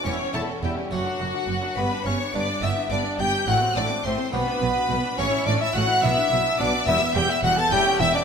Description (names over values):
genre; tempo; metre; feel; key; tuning
classical, baroque-style concerto movement with solo episodes; 70 BPM (dotted quarters); 6/8; straight; unclear; A4 = 441 Hz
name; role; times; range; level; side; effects
rich studio violin section; melody; 0.0-8.2 s; F#5 to A6; -28 LUFS; left 2 dB; none
warm bassoon; melody; 0.0-8.2 s; F#3 to A4; -26 LUFS; left 2 dB; none
rich symphonic violin section; second line; 0.0-8.2 s; F#4 to A5; -26 LUFS; left 1 dB; none
rich studio viola section; accompaniment; 0.0-8.2 s; G3 to F#4; -32 LUFS; right 1 dB; none
rich chamber cello section; bass; 0.0-8.1 s; E2 to B2; -30 LUFS; right 3 dB; none
harpsichord; accompaniment; 0.1-8.2 s; E2 to A4; -32 LUFS; right 2 dB; none
rich chamber double bass section; bass; 0.1-8.1 s; E1 to B1; -30 LUFS; right 4 dB; none
room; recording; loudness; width
moderate concert hall reverb, RT60 1.7 s; minimal, uncompressed stereo recording; -20 LUFS; side -6 dB against mid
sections
0.0-8.2 A section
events
none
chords
0.0 C#dim/E; 0.9 D/F#; 1.8 G; 3.5 F#dim/A; 4.3 G/B; 5.2 A; 6.0 Bm; 6.9 Em; 7.7 A/E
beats
| 0.05 0.91 | 1.77 2.63 | 3.48 4.33 | 5.18 6.03 | 6.87 7.72